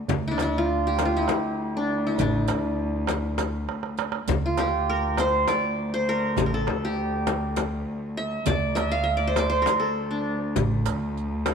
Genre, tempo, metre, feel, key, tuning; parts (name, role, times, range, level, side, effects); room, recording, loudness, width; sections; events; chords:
Turkish makam ensemble; 201 BPM (eighths); 7/8; straight; D makam ussak; A4 = 437 Hz
warm cello; drone; 0.0-11.5 s; D2; -31 LUFS; equal
upright bass; bass; 0.1-11.5 s; A1 to D2; -29 LUFS; equal
darbuka; percussion; 0.1-11.5 s; -31 LUFS; right 9 dB
frame drum; percussion; 0.1-11.5 s; -30 LUFS; left 10 dB
riq; percussion; 0.1-11.5 s; -38 LUFS; right 12 dB
qanun; melody; 0.3-11.5 s; D4 to F5; -25 LUFS; right 1 dB
moderate echo chamber reverb, RT60 1.7 s, small room ambience; 1960s-style stereo with parts hard left and right; -23 LUFS; side -6 dB against mid
0.0-11.5 A section
drum fill 3.7-4.3